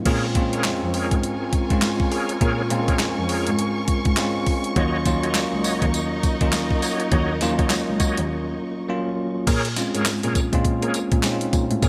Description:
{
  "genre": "R&B, new jack swing",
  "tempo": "102 BPM",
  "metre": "4/4",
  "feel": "swing 60% on 16ths",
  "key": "Bb minor",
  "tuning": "A4 = 440 Hz",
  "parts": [
    { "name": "bell-like tine electric piano", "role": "accompaniment", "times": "0.0-11.9 s", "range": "Gb3 to F4", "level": "-27 LUFS", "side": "equal", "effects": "none" },
    { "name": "warm cello", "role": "bass", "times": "0.0-11.9 s", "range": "Db2 to Bb3", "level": "-28 LUFS", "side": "equal", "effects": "none" },
    { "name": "warm studio string section", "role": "sustained chords", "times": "0.1-9.4 s", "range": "Eb4 to Db6", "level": "-32 LUFS", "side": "equal", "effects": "none" },
    { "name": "bright tonewheel organ", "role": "stabs", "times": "0.1-11.9 s", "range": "Gb4 to Eb5", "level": "-32 LUFS", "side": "equal", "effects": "overdrive, chorus vibrato, fast rotary speaker" },
    { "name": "crisp 8-bit digital drum machine", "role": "drums", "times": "0.1-11.9 s", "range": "crash cymbal, handclaps, hi-hat, kick drum, snare drum, tambourine", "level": "-25 LUFS", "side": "equal", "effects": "none" }
  ],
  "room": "light reverb",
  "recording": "bright 1980s-style digital production",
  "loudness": "-22 LUFS",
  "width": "mono",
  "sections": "0.1-9.5 A section; 9.5-11.9 B section",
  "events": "break 8.3-9.5",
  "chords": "0.1 Bbm7; 4.8 Ebm7; 9.5 Bbm7"
}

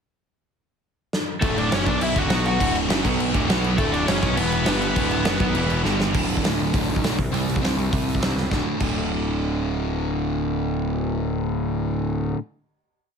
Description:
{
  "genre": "punk rock",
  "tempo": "203 BPM",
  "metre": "4/4",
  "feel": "straight",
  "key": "D major",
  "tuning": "A4 = 440 Hz",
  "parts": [
    { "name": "big rock drum kit", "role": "drums", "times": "1.1-8.9 s", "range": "crash cymbal, hi-hat, kick drum, snare drum", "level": "-24 LUFS", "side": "equal", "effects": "none" },
    { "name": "crunchy overdriven guitar", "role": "melody", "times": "1.4-5.8 s", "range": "A3 to F#5", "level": "-25 LUFS", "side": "left 2 dB", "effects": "none" },
    { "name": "overdriven electric guitar", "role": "riff", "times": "1.4-12.4 s", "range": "D2 to C4", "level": "-27 LUFS", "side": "right 11 dB", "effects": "none" },
    { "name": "scooped high-gain guitar", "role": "riff", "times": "1.4-6.1 s", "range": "D2 to B3", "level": "-29 LUFS", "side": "right 2 dB", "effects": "distortion" },
    { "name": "sludgy distorted guitar", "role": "riff", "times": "1.4-12.4 s", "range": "D2 to C4", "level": "-27 LUFS", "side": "left 13 dB", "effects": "overdrive" },
    { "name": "fuzz picked electric bass", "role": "bass", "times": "1.4-12.3 s", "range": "D1 to C#2", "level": "-27 LUFS", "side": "equal", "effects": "overdrive" }
  ],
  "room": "light reverb",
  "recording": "none",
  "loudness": "-20 LUFS",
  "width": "side -6 dB against mid",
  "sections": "0.2-1.4 pickup bar; 1.4-6.1 riff; 6.1-8.5 outro; 8.5-10.9 final chord",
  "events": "drum fill 1.1, 5.8, 8.4",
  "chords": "0.2 N.C.; 1.4 D; 1.9 B5; 2.1 D; 2.3 B5; 2.6 D; 3.0 B5; 3.3 D5; 3.5 B5; 3.8 D; 4.4 E5; 4.7 G5; 5.0 D; 5.6 E5; 5.8 G5; 6.1 D5; 7.2 C5; 8.5 D5"
}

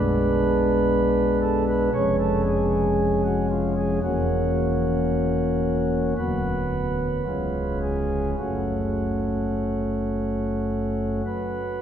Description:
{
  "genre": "classical, chorale-style piece for pipe organ",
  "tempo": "50-59 BPM",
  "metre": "4/4",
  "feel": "rubato",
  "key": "F# minor",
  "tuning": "A4 = 437 Hz",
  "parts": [
    { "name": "pipe organ, flutes", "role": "solo", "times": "0.0-11.8 s", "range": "C#1 to C#5", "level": "-21 LUFS", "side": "equal", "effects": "none" }
  ],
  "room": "wet cathedral reverb, RT60 4.2 s",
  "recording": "heard from further back in the room",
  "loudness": "-21 LUFS",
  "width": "side -9 dB against mid",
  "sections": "0.0-11.8 A section",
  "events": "none",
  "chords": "0.0 G#dim/B; 1.9 C#/E#; 4.0 F#7/E; 6.2 Bm/D; 7.3 C#7; 8.4 F#m"
}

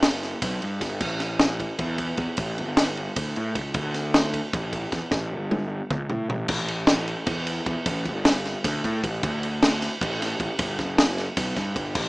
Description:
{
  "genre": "math rock and midwest emo",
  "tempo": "307 BPM (eighths)",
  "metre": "7/8",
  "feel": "straight",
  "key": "unclear",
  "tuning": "A4 = 445 Hz",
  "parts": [
    { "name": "fuzz picked electric bass", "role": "bass", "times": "0.0-12.1 s", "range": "F#1 to A2", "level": "-28 LUFS", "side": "equal", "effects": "overdrive" },
    { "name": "compact cocktail drum kit", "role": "drums", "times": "0.0-12.0 s", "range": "crash cymbal, kick drum, ride cymbal, snare drum, toms", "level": "-24 LUFS", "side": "equal", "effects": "none" }
  ],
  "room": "moderate small room reverb, RT60 0.5 s",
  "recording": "rough home demo mix, small speaker sound",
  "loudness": "-23 LUFS",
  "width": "side -22 dB against mid",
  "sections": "0.0-6.5 A section; 6.5-12.1 B section",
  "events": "drum fill 5.1-6.5",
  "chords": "none"
}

